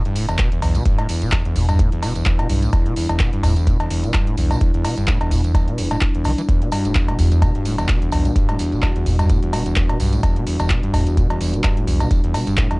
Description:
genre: acid house.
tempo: 128 BPM.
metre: 4/4.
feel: swing 55% on 16ths.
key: E minor.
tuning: A4 = 440 Hz.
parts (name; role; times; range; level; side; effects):
dark analog pad; sustained chords; 0.0-12.8 s; G3 to F#4; -26 LUFS; equal; lush chorus, sidechain pumping, cassette tape.
overdriven acid bass; riff; 0.0-12.8 s; E2 to E3; -22 LUFS; equal; distortion, tube saturation, wide subtle chorus, sidechain pumping, cassette tape.
warm sub bass; bass; 0.1-12.8 s; E1 to E2; -22 LUFS; equal; sidechain pumping.
booming analog drum machine; drums; 0.1-12.8 s; cowbell, handclaps, hi-hat; -26 LUFS; equal; overdrive, cassette tape.
tambourine; percussion; 0.2-12.7 s; none; -37 LUFS; right 8 dB; none.
electronic kick drum; drums; 0.4-12.7 s; none; -19 LUFS; equal; overdrive, cassette tape.
room: little or no reverb.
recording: home recording on cassette, nothing above 11.0 kHz.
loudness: -16 LUFS.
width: side -27 dB against mid.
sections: 0.0-12.8 A section.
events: none.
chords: 0.0 Em7.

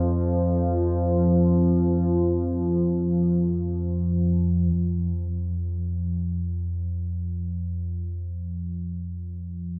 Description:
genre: ambient.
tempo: free time.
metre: none.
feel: none.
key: unclear.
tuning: A4 = 438 Hz.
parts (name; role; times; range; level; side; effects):
analog drone; solo; 0.0-9.8 s; F2 to F3; -25 LUFS; equal; chorus, tape echo.
room: wet huge ambient reverb, RT60 7.5 s.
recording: in a vast, echoing space.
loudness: -25 LUFS.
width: mono.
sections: 0.0-4.7 A section; 4.7-9.8 B section.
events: none.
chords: none.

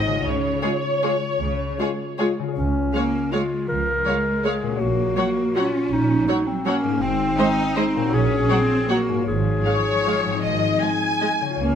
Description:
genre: classical, orchestral ballroom waltz.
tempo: 146-175 BPM.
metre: 3/4.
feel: rubato.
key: Db major.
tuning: A4 = 445 Hz.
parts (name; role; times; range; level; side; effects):
warm studio violin section; melody; 0.0-11.3 s; Db5 to Gb5; -28 LUFS; left 1 dB; none.
concert harp; arpeggios; 0.0-11.8 s; Ab2 to Eb5; -28 LUFS; left 9 dB; none.
rich symphonic cello section; bass; 0.0-11.8 s; Ab2 to Eb4; -27 LUFS; right 2 dB; none.
warm symphonic double bass section; bass; 0.0-11.8 s; Ab1 to Db2; -27 LUFS; right 4 dB; none.
warm symphonic violin section; second line; 0.6-11.6 s; Ab4 to Ab5; -26 LUFS; left 3 dB; none.
warm symphonic viola section; accompaniment; 0.6-11.3 s; Gb3 to F4; -28 LUFS; right 3 dB; none.
warm French horn section; sustained chords; 0.6-2.3 s; Ab3 to F4; -31 LUFS; left 3 dB; none.
mellow clarinet; second line; 2.6-11.8 s; C4 to Bb4; -24 LUFS; left 1 dB; none.
room: wet recital hall reverb, RT60 1.3 s.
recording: none.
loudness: -19 LUFS.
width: side -8 dB against mid.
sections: 0.0-2.6 A section; 2.6-11.8 A section.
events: none.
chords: 0.2 Db; 4.8 Gb/Bb; 7.0 Ab; 8.1 Gb/Bb; 9.3 Db/Ab.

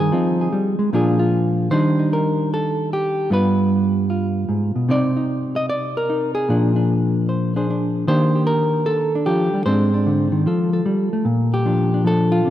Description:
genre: solo jazz.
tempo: 151 BPM.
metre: 4/4.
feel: swing 67% on 8ths.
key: unclear.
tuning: A4 = 439 Hz.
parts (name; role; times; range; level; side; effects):
hollow-body jazz guitar; solo; 0.0-12.5 s; G2 to Eb5; -17 LUFS; equal; none.
room: moderate lush hall reverb, RT60 2.8 s.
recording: rough home demo mix.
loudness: -17 LUFS.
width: side -12 dB against mid.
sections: 0.0-11.3 A section; 11.3-12.5 B section.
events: none.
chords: 0.1 Fm9; 0.9 Bb7; 1.7 Ebmaj7; 3.3 G7b9; 4.9 Cm9; 6.5 Bb9; 8.1 Ebmaj9#11; 9.7 Ab; 10.5 Fadd9; 11.3 Bbmaj7.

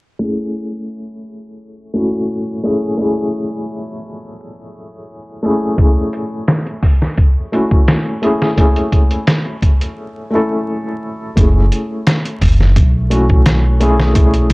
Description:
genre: trip hop.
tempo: 86 BPM.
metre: 4/4.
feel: straight.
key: F# minor.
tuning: A4 = 440 Hz.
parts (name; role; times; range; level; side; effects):
felt-muted upright piano; accompaniment; 0.2-14.5 s; A3 to A4; -18 LUFS; left 1 dB; tremolo, low-pass filter, tape echo.
trip hop sampler-style drum kit; drums; 5.8-14.5 s; hi-hat, kick drum, snare drum; -12 LUFS; equal; none.
upright bass; bass; 11.4-14.5 s; F#1 to B1; -13 LUFS; equal; tube saturation.
room: small room ambience.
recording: dry, gritty hardware recording, vinyl crackle, low-pass filter.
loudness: -12 LUFS.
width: side -24 dB against mid.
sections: 0.2-11.4 A section; 11.4-14.5 B section.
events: filter sweep on felt piano 0.2-11.4; filter sweep 0.2-11.4; break 10.0-11.4.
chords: 0.2 F#m9.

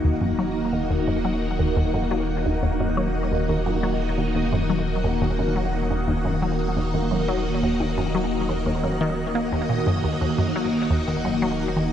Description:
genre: ambient, sequencer-driven space music.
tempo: 87 BPM.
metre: 4/4.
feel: straight.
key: Eb minor.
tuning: A4 = 443 Hz.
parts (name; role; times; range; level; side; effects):
phased string machine; sustained chords; 0.0-11.9 s; Eb3 to Eb5; -24 LUFS; left 1 dB; ensemble chorus, phaser.
resonant blip pluck; riff; 0.0-11.9 s; Eb2 to Bb3; -25 LUFS; equal; phaser, tape echo.
round analog bass; bass; 0.0-11.9 s; Eb1; -29 LUFS; equal; none.
twinkling granular texture; texture; 0.0-11.9 s; Gb5; -48 LUFS; right 3 dB; none.
room: wet huge ambient reverb, RT60 8.5 s.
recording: dark, warm production.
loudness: -21 LUFS.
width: side -10 dB against mid.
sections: 0.0-11.9 A section.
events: none.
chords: 0.0 Ebm.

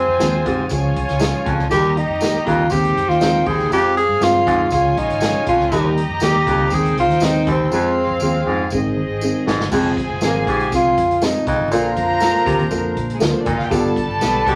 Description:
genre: uptempo 1960s-style soul.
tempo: 120 BPM.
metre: 4/4.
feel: straight.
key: unclear.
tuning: A4 = 440 Hz.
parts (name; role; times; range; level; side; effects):
breathy tenor saxophone; melody; 0.0-14.6 s; Bb3 to Ab4; -20 LUFS; equal; none.
warm studio violin section; second line; 0.0-14.6 s; Ab3 to Bb5; -26 LUFS; equal; none.
vintage muted fingered electric bass; bass; 0.0-14.6 s; F1 to Bb2; -26 LUFS; equal; none.
dark upright piano; accompaniment; 0.2-14.5 s; D3 to Ab4; -25 LUFS; equal; none.
swinging big-band drum kit; drums; 0.2-14.6 s; crash cymbal, hi-hat, kick drum, snare drum; -28 LUFS; equal; none.
tambourine; percussion; 0.2-14.3 s; none; -37 LUFS; equal; none.
raspy baritone saxophone; riff; 0.5-14.6 s; Eb2 to C3; -26 LUFS; equal; none.
warm horn section; second line; 9.7-14.6 s; C4 to D5; -32 LUFS; equal; none.
room: wet club reverb, RT60 0.5 s.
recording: vinyl crackle.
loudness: -18 LUFS.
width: mono.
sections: 0.0-9.7 A section; 9.7-14.6 B section.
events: drum fill 7.7-9.7.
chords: 0.0 Fm; 0.7 Db; 1.7 Eb; 2.7 Ab/Eb; 3.7 Fm; 4.7 Db; 5.7 Eb; 6.7 Ab; 7.7 Fm; 8.7 Ab; 9.7 Fm; 11.7 Bb; 13.7 G7.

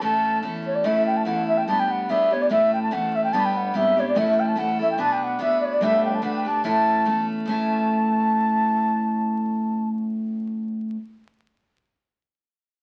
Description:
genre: celtic folk, Celtic polka.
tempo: 145 BPM.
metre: 2/4.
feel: swing 55% on 8ths.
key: A mixolydian.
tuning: A4 = 440 Hz.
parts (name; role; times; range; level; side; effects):
mellow baroque flute; melody; 0.0-9.9 s; C#5 to A5; -24 LUFS; equal; none.
picked steel-string acoustic guitar; accompaniment; 0.0-11.0 s; A2 to B4; -27 LUFS; equal; none.
upright bass; bass; 0.0-10.6 s; G1 to E2; -40 LUFS; equal; none.
room: wet studio reverb, RT60 0.7 s.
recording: very old 78 rpm record, vinyl crackle.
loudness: -22 LUFS.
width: mono.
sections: 0.8-7.5 A section; 7.5-9.1 B section.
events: none.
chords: 0.0 A; 1.7 G; 2.5 A; 3.3 G; 4.2 A; 5.0 Bm; 5.8 Gadd9; 6.6 A.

